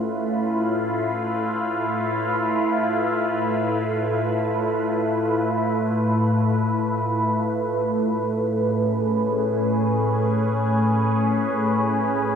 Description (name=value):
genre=ambient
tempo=free time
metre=none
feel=none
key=A major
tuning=A4 = 440 Hz
part: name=evolving wavetable pad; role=solo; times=0.0-12.4 s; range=A2 to B4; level=-20 LUFS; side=equal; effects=phaser, built-in reverb, ping-pong delay
room=wet huge ambient reverb, RT60 7.2 s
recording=dark, warm production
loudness=-20 LUFS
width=side -7 dB against mid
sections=0.0-7.9 A section; 7.9-12.4 B section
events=none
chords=0.0 Fmaj7#11/A; 7.9 Amaj9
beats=free time